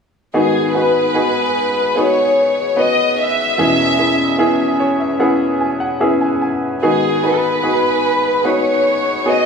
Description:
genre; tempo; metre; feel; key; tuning
pop; 74 BPM; 4/4; straight; unclear; A4 = 441 Hz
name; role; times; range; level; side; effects
bright upright piano; accompaniment; 0.3-9.5 s; E2 to G#5; -16 LUFS; left 1 dB; none
warm chamber violin section; melody; 0.4-9.5 s; G#4 to E5; -16 LUFS; equal; none
room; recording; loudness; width
wet concert hall reverb, RT60 1.9 s; studio reverb; -13 LUFS; side -5 dB against mid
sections
0.3-9.5 A section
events
upright piano fill 4.4-6.8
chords
0.3 G#m7; 3.6 E6; 6.8 G#m7

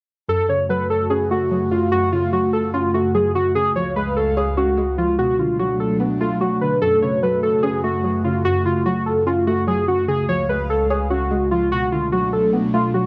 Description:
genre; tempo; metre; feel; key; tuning
hip hop; 147 BPM; 4/4; half-time; F# harmonic minor; A4 = 440 Hz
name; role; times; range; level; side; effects
warbly lo-fi synth keys; melody; 0.3-13.1 s; E#4 to C#5; -22 LUFS; equal; chorus, low-pass filter, cassette tape, tape echo
string-like resonator pluck; accompaniment; 0.3-13.1 s; F#2 to C#5; -28 LUFS; equal; chorus, low-pass filter
airy breathy pad; sustained chords; 0.3-13.1 s; C#2 to E#5; -25 LUFS; equal; chorus
room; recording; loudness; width
moderate small room reverb, RT60 0.5 s; home recording on cassette; -20 LUFS; mono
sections
0.3-13.1 A section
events
none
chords
0.3 F#m; 3.6 C#; 5.2 Bm7; 6.8 F#m; 10.1 C#; 11.7 Bm7

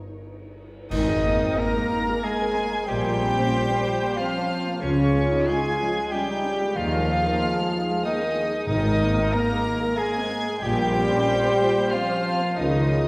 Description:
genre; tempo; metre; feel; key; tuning
cinematic, emotional film score for orchestra; 93 BPM; 3/4; rubato; Ab major; A4 = 444 Hz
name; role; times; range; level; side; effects
warm chamber violin section; melody; 0.0-13.1 s; Db5 to Bb6; -38 LUFS; equal; none
warm symphonic violin section; second line; 0.0-13.1 s; Bb4 to Bb5; -34 LUFS; equal; none
dark symphonic viola section; accompaniment; 0.0-13.1 s; Eb3 to C5; -32 LUFS; equal; none
rich symphonic double bass section; bass; 0.0-13.1 s; G1 to Eb2; -32 LUFS; equal; none
warm symphonic cello section; bass; 0.0-13.1 s; G2 to Eb3; -32 LUFS; equal; none
bright oboe; second line; 0.9-13.1 s; Db4 to Bb4; -35 LUFS; equal; none
hollow concert flute; second line; 0.9-13.1 s; Db5 to Bb5; -32 LUFS; equal; none
warm French horn section; sustained chords; 0.9-13.1 s; Db3 to Bb3; -29 LUFS; equal; none
clash cymbals and concert bass drum; percussion; 0.9-2.2 s; none; -36 LUFS; equal; none
timpani; percussion; 8.7-9.6 s; Ab2; -33 LUFS; equal; none
room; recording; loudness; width
wet concert hall reverb, RT60 2.0 s; heard from further back in the room; -23 LUFS; mono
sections
0.9-13.1 A section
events
band accent 0.9-1.6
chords
0.0 Eb7/G; 0.9 Abadd9; 2.9 Bbmadd9; 4.8 Dbadd9; 6.8 Ebsus4; 8.7 Abadd9; 10.6 Bbmadd9; 12.6 Dbadd9

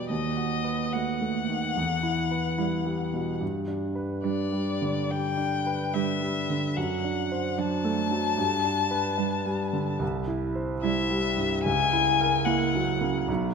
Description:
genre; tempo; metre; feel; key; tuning
classical, slow romantic movement for piano trio; 73 BPM; 4/4; rubato; unclear; A4 = 438 Hz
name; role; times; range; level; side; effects
warm violin; melody; 0.0-13.3 s; D5 to A5; -28 LUFS; left 8 dB; none
warm grand piano; accompaniment; 0.0-13.5 s; B1 to C5; -27 LUFS; right 2 dB; none
rich cello; second line; 1.0-13.1 s; F#3 to A#3; -34 LUFS; right 7 dB; none
room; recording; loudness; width
wet scoring stage reverb, RT60 2.0 s; minimal, uncompressed stereo recording; -24 LUFS; side -5 dB against mid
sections
0.0-13.5 A section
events
none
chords
0.1 B7/D#; 1.8 Em; 3.4 G; 6.8 D7/F#; 8.4 G; 10.0 C; 11.7 F#7/C#

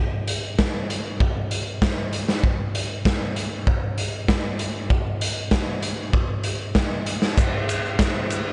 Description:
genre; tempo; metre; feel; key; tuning
rock; 97 BPM; 4/4; straight; none; none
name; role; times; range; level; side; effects
raw garage drum kit; drums; 0.3-8.4 s; hi-hat, kick drum, ride cymbal, snare drum; -24 LUFS; equal; none
egg shaker; percussion; 7.4-8.5 s; none; -41 LUFS; equal; none
room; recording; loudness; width
little or no reverb; nothing above 10.5 kHz; -24 LUFS; mono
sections
0.0-7.4 A section; 7.4-8.5 B section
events
none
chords
none

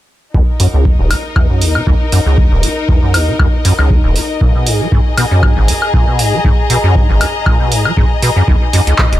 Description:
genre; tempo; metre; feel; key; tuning
acid house; 118 BPM; 4/4; swing 54% on 16ths; Eb minor; A4 = 439 Hz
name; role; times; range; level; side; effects
acid bass, square; riff; 0.3-9.2 s; Eb1 to Ab3; -13 LUFS; equal; ensemble chorus, sidechain pumping, tape echo
electronic kick drum; drums; 0.3-9.1 s; none; -13 LUFS; equal; none
rich studio string section; texture; 0.3-9.2 s; Eb4 to Bb5; -19 LUFS; left 3 dB; sidechain pumping
punchy analog drum machine; drums; 0.6-9.2 s; handclaps, hi-hat, woodblock; -17 LUFS; equal; none
room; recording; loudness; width
little or no reverb; none; -10 LUFS; side -14 dB against mid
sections
0.3-9.2 A section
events
filter sweep on acid bass 0.3-9.2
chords
0.3 Ebm; 4.4 Abm; 8.5 Eb5

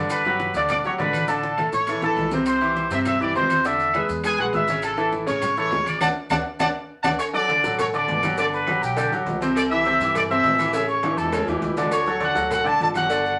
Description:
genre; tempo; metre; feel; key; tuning
latin, salsa; 203 BPM; 4/4; straight; D major; A4 = 440 Hz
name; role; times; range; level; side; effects
bright baby grand piano; accompaniment; 0.0-13.3 s; C3 to D5; -27 LUFS; equal; none
upright bass; bass; 0.0-13.4 s; G1 to A2; -38 LUFS; equal; none
clear trumpet section; melody; 0.1-13.4 s; F#4 to E6; -24 LUFS; equal; none
bongos and cowbell; percussion; 0.1-13.2 s; none; -35 LUFS; equal; none
claves; percussion; 0.1-13.1 s; none; -39 LUFS; equal; none
congas; percussion; 0.1-13.4 s; none; -36 LUFS; equal; none
maracas; percussion; 0.1-13.4 s; none; -45 LUFS; equal; none
timbales and agogo bells; percussion; 0.1-13.1 s; none; -36 LUFS; equal; none
room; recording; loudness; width
wet studio reverb, RT60 0.6 s; none; -22 LUFS; mono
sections
0.0-7.2 A section; 7.2-13.4 B section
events
drum fill 1.3-2.5, 6.0-7.2, 11.0-11.9; band accent 6.0-7.2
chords
0.1 Gmaj7; 1.3 Asus4; 1.9 A; 2.5 Cadd9; 3.7 E7; 4.8 A; 6.0 Dmaj7; 7.2 D; 8.4 Gmaj7; 9.6 C; 10.7 A7; 11.9 Dmaj7

